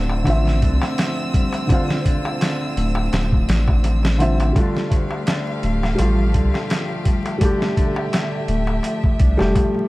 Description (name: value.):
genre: trip hop.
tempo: 84 BPM.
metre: 4/4.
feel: swing 55% on 16ths.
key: D minor.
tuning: A4 = 440 Hz.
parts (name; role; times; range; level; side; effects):
felt-muted upright piano; accompaniment; 0.0-9.9 s; D3 to F5; -24 LUFS; equal; harmonic tremolo.
warm studio violin section; sustained chords; 0.0-9.9 s; A3 to E6; -29 LUFS; equal; none.
Celtic harp; arpeggios; 0.0-9.9 s; D2 to D4; -26 LUFS; left 1 dB; tape echo.
soft dub sub bass; bass; 0.0-9.5 s; D1 to C2; -19 LUFS; equal; tube saturation.
darbuka; percussion; 0.1-9.9 s; none; -32 LUFS; left 2 dB; none.
boom bap sampler-style drum kit; drums; 0.3-9.7 s; hi-hat, kick drum, snare drum; -20 LUFS; equal; none.
room: studio reverb.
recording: dark, warm production, vinyl crackle.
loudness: -17 LUFS.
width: side -19 dB against mid.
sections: 0.0-9.9 A section.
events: none.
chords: 0.0 Dm9.